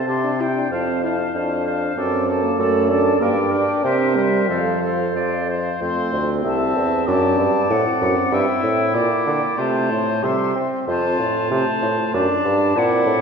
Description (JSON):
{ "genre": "quick classical-period movement for wind quintet", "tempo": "95 BPM", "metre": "2/4", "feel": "straight", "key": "F major", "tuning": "A4 = 441 Hz", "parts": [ { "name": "silver concert flute", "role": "melody", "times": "0.0-13.2 s", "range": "E5 to C6", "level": "-27 LUFS", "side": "left 6 dB", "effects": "none" }, { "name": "warm oboe", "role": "second line", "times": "0.0-13.2 s", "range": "C5 to A5", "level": "-26 LUFS", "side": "left 2 dB", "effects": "none" }, { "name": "bright clarinet", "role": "accompaniment", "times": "0.0-13.2 s", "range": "C4 to D5", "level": "-26 LUFS", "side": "right 5 dB", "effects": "none" }, { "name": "clear French horn", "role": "accompaniment", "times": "0.0-13.2 s", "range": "F3 to E4", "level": "-24 LUFS", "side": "equal", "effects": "none" }, { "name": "warm bassoon", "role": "bass", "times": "0.1-13.2 s", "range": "C2 to C4", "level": "-20 LUFS", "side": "right 1 dB", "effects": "none" } ], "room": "wet concert hall reverb, RT60 2.0 s", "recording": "heard from further back in the room", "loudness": "-17 LUFS", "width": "side -6 dB against mid", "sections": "0.0-5.8 A section; 5.8-13.2 B section", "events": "none", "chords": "0.1 C5; 0.7 F; 2.0 D/F#; 3.2 Gm; 3.8 C7; 4.5 F; 7.1 D7/F#; 8.3 Gm; 9.6 F/C; 10.2 C; 10.9 F; 12.1 D7/F#", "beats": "0.08 | 0.72 1.35 | 1.97 2.59 | 3.21 3.84 | 4.49 5.15 | 5.81 6.44 | 7.07 7.70 | 8.32 8.95 | 9.59 10.23 | 10.88 11.52 | 12.15 12.76" }